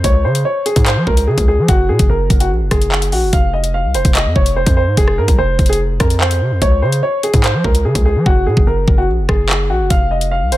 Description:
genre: hip hop, drill.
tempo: 146 BPM.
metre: 4/4.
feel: half-time.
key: F phrygian.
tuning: A4 = 440 Hz.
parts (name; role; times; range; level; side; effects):
dark baby grand piano; melody; 0.0-10.6 s; Gb4 to F5; -17 LUFS; equal; tape echo.
hard-hitting 808-style bass; bass; 0.0-10.6 s; F1 to F3; -16 LUFS; equal; none.
drill drum kit; drums; 0.0-10.6 s; handclaps, hi-hat, kick drum, rim click; -14 LUFS; equal; none.
room: little or no reverb.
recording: none.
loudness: -12 LUFS.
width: side -15 dB against mid.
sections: 0.0-10.6 A section.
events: hi-hats muted 8.3-9.9.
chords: 0.0 Db5; 1.7 Gb; 3.3 F5; 6.6 Db5; 8.3 Gb; 9.9 F5.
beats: | 0.04 0.45 0.86 1.27 | 1.69 2.10 2.51 2.92 | 3.33 3.74 4.15 4.56 | 4.97 5.38 5.79 6.21 | 6.62 7.03 7.44 7.85 | 8.26 8.67 9.08 9.49 | 9.90 10.31.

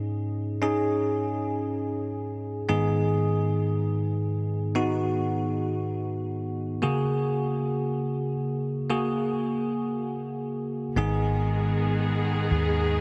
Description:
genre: pop ballad.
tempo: 58 BPM.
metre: 4/4.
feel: straight.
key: G# minor.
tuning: A4 = 440 Hz.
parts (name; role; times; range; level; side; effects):
bell-like tine electric piano; accompaniment; 0.0-13.0 s; G#2 to G#4; -28 LUFS; equal; lush chorus.
rich studio string section; sustained chords; 11.0-13.0 s; D#3 to G#4; -32 LUFS; equal; none.
vintage muted fingered electric bass; bass; 11.0-13.0 s; G#1 to D#2; -31 LUFS; equal; none.
room: moderate huge ambient reverb, RT60 4.5 s.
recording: dreamy mix soaked in reverb.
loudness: -27 LUFS.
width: mono.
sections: 0.0-13.0 A section.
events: none.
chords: 0.0 C#sus2; 2.7 G#m; 6.8 F#add9; 11.0 G#m.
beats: 0.62 1.65 | 2.69 3.72 4.75 5.79 | 6.82 7.86 8.89 9.93 | 10.96 11.99.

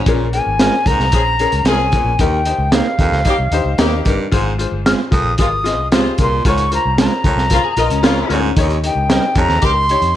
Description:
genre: uptempo 1960s-style soul.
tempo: 113 BPM.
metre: 4/4.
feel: straight.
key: unclear.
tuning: A4 = 439 Hz.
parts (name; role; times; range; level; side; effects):
electric guitar at the edge of break-up; riff; 0.0-0.2, 7.6-8.5 s; Db4 to Ab4; -25 LUFS; left 13 dB; ensemble chorus.
clear upright piano; accompaniment; 0.1-10.1 s; Ab2 to Eb5; -22 LUFS; left 7 dB; none.
raspy baritone saxophone; riff; 0.1-9.6 s; Eb2 to Bb2; -24 LUFS; right 4 dB; none.
vintage muted fingered electric bass; bass; 0.1-10.2 s; G1 to F2; -20 LUFS; equal; none.
crunchy breakbeat drum kit; drums; 0.1-10.1 s; hi-hat, kick drum, snare drum; -17 LUFS; equal; none.
mellow jazz flute; melody; 0.3-10.2 s; F5 to F6; -18 LUFS; equal; slapback echo.
mellow electric guitar; stabs; 0.6-9.2 s; G3 to Bb4; -22 LUFS; right 8 dB; none.
warm horn section; second line; 1.1-9.7 s; C3 to Ab4; -24 LUFS; left 2 dB; none.
room: light reverb, small room ambience.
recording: none.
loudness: -13 LUFS.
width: side -12 dB against mid.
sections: 0.0-10.2 A section.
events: none.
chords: 0.1 Bbm7; 2.2 Eb; 4.3 Ab6; 6.4 Db6; 8.6 Eb7.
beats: | 0.07 0.60 1.13 1.66 | 2.20 2.73 3.26 3.79 | 4.32 4.86 5.39 5.92 | 6.45 6.98 7.51 8.04 | 8.57 9.10 9.63 10.16.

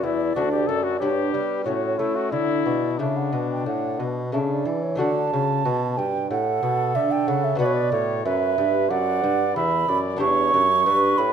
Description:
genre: classical, baroque-style sonata movement with continuo.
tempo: 92 BPM.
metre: 4/4.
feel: straight.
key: D major.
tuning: A4 = 440 Hz.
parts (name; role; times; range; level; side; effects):
dark trumpet; melody; 0.0-11.3 s; D4 to E5; -27 LUFS; left 9 dB; none.
mellow baroque flute; second line; 0.0-11.3 s; B4 to C#6; -23 LUFS; right 6 dB; none.
lute; accompaniment; 0.0-11.3 s; D2 to G4; -27 LUFS; left 1 dB; none.
warm bassoon; bass; 0.0-11.3 s; D2 to A3; -26 LUFS; right 1 dB; none.
room: moderate recital hall reverb, RT60 1.3 s.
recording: none.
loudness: -20 LUFS.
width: side -8 dB against mid.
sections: 0.0-5.0 A section; 5.0-11.3 B section.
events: none.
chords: 0.0 D; 1.0 G; 1.7 A; 2.3 D; 7.6 Em7.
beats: 0.36 1.01 1.66 | 2.33 3.00 3.67 4.33 | 5.00 5.65 6.30 6.95 | 7.60 8.25 8.90 9.56 | 10.21 10.86.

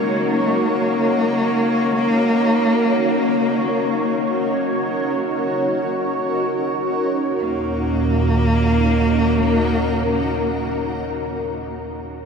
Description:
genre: dark ambient drone.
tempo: free time.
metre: none.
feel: none.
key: Eb minor.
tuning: A4 = 439 Hz.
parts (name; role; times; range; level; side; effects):
dark cello; melody; 0.0-11.1 s; Bb3; -21 LUFS; equal; tape echo.
granular cloud pad; sustained chords; 0.0-11.7 s; Db4 to Bb4; -22 LUFS; equal; built-in reverb.
bubbling stepped-filter texture; texture; 0.0-7.4 s; Db5; -26 LUFS; equal; chorus, built-in reverb.
deep rumbling drone; drone; 7.6-11.1 s; Eb2 to Bb2; -22 LUFS; right 1 dB; built-in reverb.
room: wet huge ambient reverb, RT60 8.4 s.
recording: in a vast, echoing space.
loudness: -17 LUFS.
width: side -6 dB against mid.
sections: 0.0-7.4 A section; 7.4-12.3 B section.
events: none.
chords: 0.0 Eb5.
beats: free time.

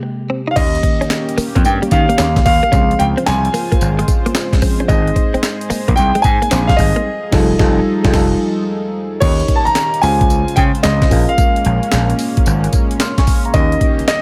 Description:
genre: R&B, new jack swing.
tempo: 111 BPM.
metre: 4/4.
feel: swing 66% on 16ths.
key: unclear.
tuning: A4 = 440 Hz.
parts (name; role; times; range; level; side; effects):
FM electric piano; accompaniment; 0.0-14.2 s; C3 to F6; -24 LUFS; equal; none.
direct-recorded clean electric guitar; riff; 0.0-7.0 s; G3 to Eb4; -24 LUFS; equal; analog chorus.
clear grand piano; melody; 0.5-14.2 s; Db5 to Bb5; -20 LUFS; equal; none.
chorused pulse-width pad; sustained chords; 0.6-14.2 s; Db3 to C5; -26 LUFS; equal; none.
gritty slap bass; bass; 0.6-14.0 s; F1 to Eb3; -19 LUFS; equal; overdrive.
breakbeat sampler-style drum kit; drums; 0.6-14.2 s; crash cymbal, handclaps, hi-hat, kick drum, snare drum, tambourine; -18 LUFS; equal; none.
room: little or no reverb.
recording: none.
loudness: -14 LUFS.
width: mono.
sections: 0.6-9.2 A section; 9.2-14.2 B section.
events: break 0.0-0.6, 8.1-9.2; band accent 7.1-9.2.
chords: 0.0 Abmaj9; 0.6 Eb7; 2.7 Dbmaj7; 4.9 Abmaj7; 7.1 F9; 9.2 Eb7; 10.0 Dbmaj7; 11.1 Bbm7; 13.5 Eb7.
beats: 0.03 | 0.57 1.11 1.65 2.19 | 2.73 3.27 3.81 4.35 | 4.89 5.43 5.97 6.51 | 7.05 7.59 8.13 8.68 | 9.22 9.76 10.30 10.84 | 11.38 11.92 12.46 13.00 | 13.54 14.08.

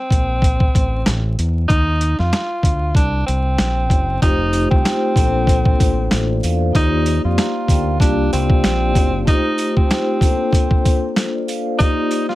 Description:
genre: hip hop, boom-bap hip-hop.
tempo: 95 BPM.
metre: 4/4.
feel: swing 56% on 16ths.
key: unclear.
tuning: A4 = 440 Hz.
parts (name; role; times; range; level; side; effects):
breathy tenor saxophone; melody; 0.0-12.3 s; C4 to F4; -22 LUFS; right 1 dB; high-pass filter, low-pass filter, plate reverb.
deep dub fingered electric bass; bass; 0.1-9.2 s; F1 to F2; -19 LUFS; equal; none.
boom bap sampler-style drum kit; drums; 0.1-12.3 s; hi-hat, kick drum, snare drum; -16 LUFS; equal; none.
vibraphone with soft mallets; accompaniment; 4.2-12.3 s; A3 to Bb5; -20 LUFS; left 2 dB; high-pass filter, low-pass filter.
sleigh bells; percussion; 4.2-12.3 s; none; -35 LUFS; right 7 dB; none.
room: little or no reverb.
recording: vinyl crackle.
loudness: -14 LUFS.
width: side -17 dB against mid.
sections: 0.0-12.3 A section.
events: break 0.0-4.2.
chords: 0.1 Bbsus2; 1.7 Ebsus2; 3.0 Daug7; 4.2 F7; 5.2 Bbmaj9; 6.7 Ebmaj9; 8.0 C9sus4; 9.3 F7; 10.2 Bbmaj9; 11.8 Ebmaj9.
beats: 0.43 1.06 | 1.69 2.33 2.96 3.59 | 4.22 4.85 5.48 6.11 | 6.75 7.38 8.01 8.64 | 9.27 9.90 10.54 11.17 | 11.80.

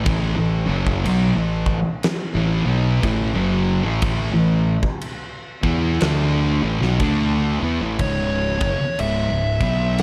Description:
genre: stoner and doom metal.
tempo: 60 BPM.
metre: 4/4.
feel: swing 62% on 8ths.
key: unclear.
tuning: A4 = 440 Hz.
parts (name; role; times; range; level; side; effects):
distorted electric guitar; riff; 0.0-8.0 s; F#2 to E4; -27 LUFS; equal; distortion.
thick fuzz guitar; riff; 0.0-10.0 s; C#2 to E4; -27 LUFS; equal; distortion.
thick fuzz guitar; riff; 0.0-10.0 s; C#2 to E4; -27 LUFS; equal; distortion.
fuzz fingered electric bass; bass; 0.0-10.0 s; C#1 to E2; -26 LUFS; equal; overdrive.
big rock drum kit; drums; 0.1-10.0 s; crash cymbal, kick drum, snare drum; -28 LUFS; equal; none.
fuzz lead guitar; melody; 8.0-10.0 s; C#5 to E5; -26 LUFS; equal; distortion, analog delay.
room: studio ambience.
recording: none.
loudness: -20 LUFS.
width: mono.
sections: 0.0-8.0 A section; 8.0-10.0 B section.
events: none.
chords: 0.0 A5; 8.0 C#5; 9.5 B5.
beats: | 0.07 1.06 2.05 3.04 | 4.03 5.02 6.01 7.00 | 8.00 8.99 9.99.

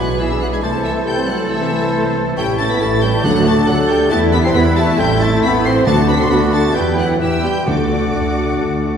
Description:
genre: quick classical-period movement for symphony orchestra.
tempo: 137 BPM.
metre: 4/4.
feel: rubato.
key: unclear.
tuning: A4 = 441 Hz.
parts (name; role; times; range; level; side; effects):
rich studio violin section; melody; 0.0-9.0 s; D6 to C7; -26 LUFS; left 1 dB; none.
bright concert flute; second line; 0.0-9.0 s; E5 to B5; -26 LUFS; left 1 dB; none.
dark clarinet; second line; 0.0-9.0 s; D4 to E4; -24 LUFS; left 4 dB; none.
warm oboe; second line; 0.0-9.0 s; B4 to D5; -28 LUFS; equal; none.
warm studio violin section; second line; 0.0-9.0 s; D5 to C6; -26 LUFS; left 3 dB; none.
mellow bassoon; accompaniment; 0.0-9.0 s; E3 to B3; -23 LUFS; right 2 dB; none.
rich studio viola section; accompaniment; 0.0-8.9 s; A3 to C5; -24 LUFS; right 1 dB; none.
dark French horn section; sustained chords; 0.0-9.0 s; D3 to C4; -20 LUFS; left 2 dB; none.
rich studio cello section; bass; 0.0-9.0 s; E4 to B4; -23 LUFS; right 2 dB; none.
rich studio double bass section; bass; 0.0-9.0 s; A1 to E2; -20 LUFS; right 2 dB; none.
timpani; percussion; 3.2-8.3 s; D3; -22 LUFS; left 1 dB; none.
room: wet scoring stage reverb, RT60 1.9 s.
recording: heard from further back in the room.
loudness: -13 LUFS.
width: side -7 dB against mid.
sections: 0.0-9.0 A section.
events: none.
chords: 0.0 E7/B; 0.6 Am/C; 2.4 A; 3.2 D; 4.1 Em; 5.0 Am; 5.9 D; 6.8 Em; 7.7 D.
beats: 0.21 | 0.64 1.07 1.50 1.94 | 2.37 2.80 3.24 3.67 | 4.11 4.55 4.99 5.43 | 5.87 6.30 6.75 7.20 | 7.67 8.13 8.60.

